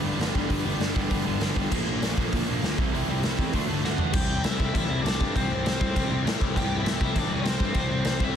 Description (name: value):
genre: punk rock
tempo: 199 BPM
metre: 4/4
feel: straight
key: unclear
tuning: A4 = 440 Hz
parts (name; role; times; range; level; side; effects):
- distorted electric guitar; riff; 0.0-8.4 s; G2 to D4; -31 LUFS; left 15 dB; distortion
- distorted electric guitar; riff; 0.0-4.1 s; G2 to E4; -30 LUFS; right 15 dB; distortion
- fuzz picked electric bass; bass; 0.0-8.3 s; G1 to A2; -30 LUFS; equal; overdrive
- raw garage drum kit; drums; 0.2-8.3 s; crash cymbal, hi-hat, kick drum, snare drum, toms; -26 LUFS; equal; none
- overdriven electric guitar; melody; 3.9-8.4 s; C4 to G5; -31 LUFS; equal; none
room: little or no reverb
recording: dense, heavily limited modern master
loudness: -23 LUFS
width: side -8 dB against mid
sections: 0.0-4.1 A section; 4.1-8.4 B section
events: drum fill 3.8-4.1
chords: 0.0 G; 1.7 Bb; 2.8 C; 3.5 D; 4.1 C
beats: 0.20 | 0.51 0.81 1.11 1.42 | 1.72 2.02 2.33 2.63 | 2.93 3.23 3.54 3.84 | 4.14 4.44 4.75 5.05 | 5.35 5.65 5.95 6.25 | 6.55 6.85 7.15 7.45 | 7.75 8.06 8.36